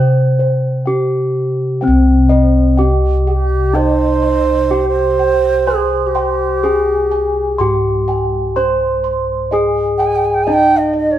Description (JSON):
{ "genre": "Javanese gamelan", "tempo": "62 BPM", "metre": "4/4", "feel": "straight", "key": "unclear", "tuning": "A4 = 440 Hz", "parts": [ { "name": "gamelan-type bronze metallophone", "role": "melody", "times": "0.0-11.2 s", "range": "C4 to C5", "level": "-16 LUFS", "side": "equal", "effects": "none" }, { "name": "gamelan-type bossed gongs", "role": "arpeggios", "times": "0.0-11.0 s", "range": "C5 to C6", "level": "-25 LUFS", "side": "left 2 dB", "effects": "none" }, { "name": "gamelan-type bossed gongs", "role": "bass", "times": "0.0-11.2 s", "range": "C2 to C5", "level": "-17 LUFS", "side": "equal", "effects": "none" }, { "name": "gamelan-type bronze metallophone", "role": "arpeggios", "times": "1.8-11.2 s", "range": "C5 to C6", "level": "-24 LUFS", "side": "right 3 dB", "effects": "none" }, { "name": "bright bass bansuri", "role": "second line", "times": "3.3-11.2 s", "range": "G4-36c to Ab5", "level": "-16 LUFS", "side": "right 4 dB", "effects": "none" } ], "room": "moderate large studio reverb, RT60 0.9 s", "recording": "band playing live in one room", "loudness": "-12 LUFS", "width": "side -12 dB against mid", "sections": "0.0-1.8 A section; 1.8-11.2 B section", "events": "none", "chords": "none" }